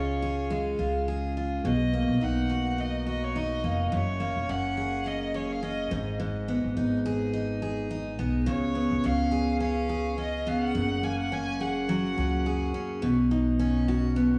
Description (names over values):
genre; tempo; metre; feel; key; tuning
pop; 106 BPM; 4/4; swing 55% on 16ths; F# major; A4 = 441 Hz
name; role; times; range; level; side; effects
clear violin; melody; 0.0-12.7 s; C#5 to G#5; -36 LUFS; equal; cassette tape, tape echo
picked steel-string acoustic guitar; accompaniment; 0.0-14.4 s; F#2 to G#4; -30 LUFS; equal; cassette tape
upright bass; bass; 0.0-14.4 s; E#1 to C#2; -34 LUFS; equal; tube saturation
room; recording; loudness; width
light reverb, studio reverb; home recording on cassette, vinyl crackle; -28 LUFS; mono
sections
0.0-1.6 A section; 1.6-10.8 B section; 10.8-14.4 C section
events
none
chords
0.0 C#; 1.6 Bmaj7; 3.9 F#add9; 5.9 G#m; 8.5 C#7; 10.8 F#add9; 13.0 Badd9